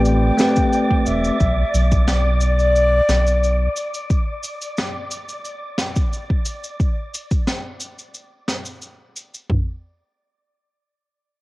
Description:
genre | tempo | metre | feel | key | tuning
sunset chillout | 89 BPM | 4/4 | straight | unclear | A4 = 440 Hz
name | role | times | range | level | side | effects
wooden flute | melody | 0.0-3.7 s | D5 to G5 | -21 LUFS | left 1 dB | analog delay
bell-like tine electric piano | accompaniment | 0.0-1.4 s | A3 to B4 | -19 LUFS | equal | auto-pan, cassette tape, tape echo
round analog bass | bass | 0.0-3.7 s | E1 to B1 | -17 LUFS | equal | none
wind-like tuned noise texture | texture | 0.0-6.8 s | D5 to D6 | -28 LUFS | left 1 dB | built-in reverb, cassette tape
cabasa and snare drum | drums | 0.1-9.5 s | none | -26 LUFS | equal | cassette tape
deep house drum kit | drums | 0.6-9.7 s | kick drum, toms | -19 LUFS | equal | cassette tape
room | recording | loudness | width
light reverb, small room ambience | home recording on cassette | -17 LUFS | side -20 dB against mid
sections
0.0-9.5 A section; 9.5-11.4 B section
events
none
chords
0.0 Am9; 1.4 Bm; 3.8 N.C.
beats
0.05 0.73 | 1.40 2.08 2.75 3.42 | 4.10 4.77 5.45 6.12 | 6.79 7.47 8.14 8.82 | 9.49

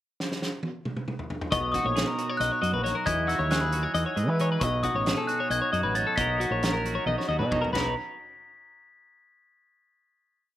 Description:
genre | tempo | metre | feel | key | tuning
math rock and midwest emo | 270 BPM (eighths) | 7/8 | straight | B major | A4 = 437 Hz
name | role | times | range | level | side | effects
loose indie drum kit | drums | 0.2-7.9 s | crash cymbal, hi-hat, kick drum, snare drum, toms | -32 LUFS | right 1 dB | none
glockenspiel with soft plastic mallets | melody | 1.5-7.9 s | C#6 to B6 | -30 LUFS | left 2 dB | none
twelve-string electric guitar | accompaniment | 1.5-8.0 s | B2 to A#4 | -33 LUFS | right 7 dB | spring reverb, slapback echo
twelve-string electric guitar | arpeggios | 1.5-7.9 s | F#4 to D#5 | -30 LUFS | left 5 dB | slapback echo
growling fingered electric bass | bass | 1.5-7.9 s | A1 to E3 | -29 LUFS | equal | overdrive
room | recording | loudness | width
little or no reverb | none | -24 LUFS | side -13 dB against mid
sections
0.0-1.5 pickup bar; 1.5-7.7 A section; 7.7-9.3 final chord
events
drum fill 0.2-1.5, 7.1-7.7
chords
0.0 N.C.; 1.5 Bmaj9; 3.1 Emaj9; 4.6 B13; 6.2 Bmaj9; 7.7 B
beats
0.20 0.42 0.64 0.86 1.08 1.30 | 1.52 1.74 1.96 2.18 2.40 2.62 2.84 | 3.06 3.29 3.51 3.73 3.95 4.17 4.39 | 4.62 4.84 5.06 5.28 5.50 5.73 5.95 | 6.17 6.39 6.62 6.84 7.07 7.29 7.51 | 7.73

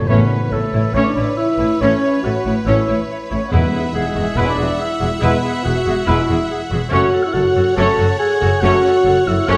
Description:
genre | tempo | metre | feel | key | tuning
cinematic, heroic adventure film score | 140 BPM | 4/4 | straight | A major | A4 = 440 Hz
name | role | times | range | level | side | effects
rich symphonic violin section | melody | 0.0-9.6 s | C#5 to F#5 | -33 LUFS | equal | none
mellow oboe | second line | 0.0-9.6 s | G#4 to A5 | -28 LUFS | equal | none
rich symphonic violin section | second line | 0.0-9.6 s | B4 to E5 | -30 LUFS | equal | none
clear studio viola section | accompaniment | 0.0-9.6 s | C#4 to A4 | -28 LUFS | equal | none
rich symphonic cello section | bass | 0.0-9.6 s | E2 to A2 | -25 LUFS | equal | none
rich symphonic double bass section | bass | 0.0-9.6 s | E1 to A1 | -25 LUFS | equal | none
timpani | percussion | 0.0-0.7, 3.5-4.1 s | E2 to A2 | -24 LUFS | equal | none
mellow flute section | second line | 0.1-9.6 s | E5 to F#5 | -36 LUFS | equal | none
warm clarinet | second line | 0.1-9.6 s | G#4 to C#5 | -31 LUFS | equal | none
bright trombone section | sustained chords | 0.1-9.6 s | E3 to A3 | -32 LUFS | equal | none
warm French horn section | sustained chords | 0.1-9.6 s | G#3 to A4 | -21 LUFS | equal | none
clear trumpet section | stabs | 0.1-9.6 s | B4 to C#5 | -25 LUFS | equal | none
room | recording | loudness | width
wet recital hall reverb, RT60 1.3 s | none | -16 LUFS | mono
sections
0.1-9.6 A section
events
none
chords
0.1 Aadd9; 3.5 Eadd9; 6.9 F#m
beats
| 0.09 0.52 0.95 1.38 | 1.81 2.24 2.67 3.09 | 3.52 3.95 4.38 4.81 | 5.23 5.66 6.08 6.51 | 6.93 7.36 7.78 8.21 | 8.64 9.06 9.49

